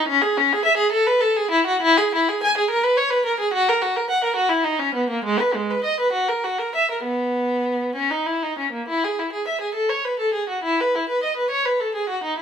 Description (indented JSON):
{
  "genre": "classical, baroque-style suite movement for unaccompanied violin",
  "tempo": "64-71 BPM (dotted quarters)",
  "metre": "6/8",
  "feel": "rubato",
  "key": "B major, E major from 8.9 s",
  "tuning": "A4 = 440 Hz",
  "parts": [
    { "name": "rich violin", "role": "solo", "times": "0.0-12.4 s", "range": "G#3 to G#5", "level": "-19 LUFS", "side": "equal", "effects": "none" }
  ],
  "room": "moderate stone room reverb, RT60 1.0 s",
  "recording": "none",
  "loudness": "-19 LUFS",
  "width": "side -8 dB against mid",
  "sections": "0.0-8.9 A section; 8.9-12.4 A section",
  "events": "none",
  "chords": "none"
}